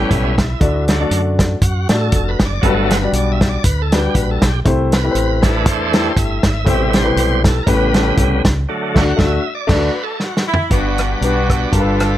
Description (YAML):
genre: uptempo gospel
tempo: 119 BPM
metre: 4/4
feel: swing 55% on 8ths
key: G major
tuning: A4 = 440 Hz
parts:
  - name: warm upright piano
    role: accompaniment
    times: 0.0-12.2 s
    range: G2 to D5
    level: -19 LUFS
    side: left 3 dB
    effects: none
  - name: bright tonewheel organ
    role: sustained chords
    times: 0.0-12.2 s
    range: B2 to B5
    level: -21 LUFS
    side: right 2 dB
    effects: fast rotary speaker, overdrive
  - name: deep dub fingered electric bass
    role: bass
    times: 0.0-12.2 s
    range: F1 to A2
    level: -19 LUFS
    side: equal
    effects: none
  - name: warm soul drum kit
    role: drums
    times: 0.1-12.1 s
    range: crash cymbal, hi-hat, kick drum, rim click, snare drum, toms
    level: -16 LUFS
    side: equal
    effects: none
  - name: warm horn section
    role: melody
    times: 10.5-12.2 s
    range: B3 to A4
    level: -20 LUFS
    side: right 2 dB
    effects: none
room: light reverb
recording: none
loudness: -13 LUFS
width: side -13 dB against mid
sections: 0.0-10.7 A section; 10.7-12.2 B section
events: tonewheel organ solo 0.0-10.7; band accent 8.7-10.7; drum fill 10.2-10.7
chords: 0.0 A7; 0.6 D; 2.6 Gmaj7; 4.7 C6; 6.7 Am7; 7.7 A9; 8.7 D; 10.7 Gmaj7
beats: 0.11 | 0.61 1.12 1.62 2.13 | 2.63 3.14 3.65 4.15 | 4.65 5.16 5.66 6.17 | 6.67 7.17 7.68 8.18 | 8.69 9.19 9.70 10.20 | 10.71 11.21 11.72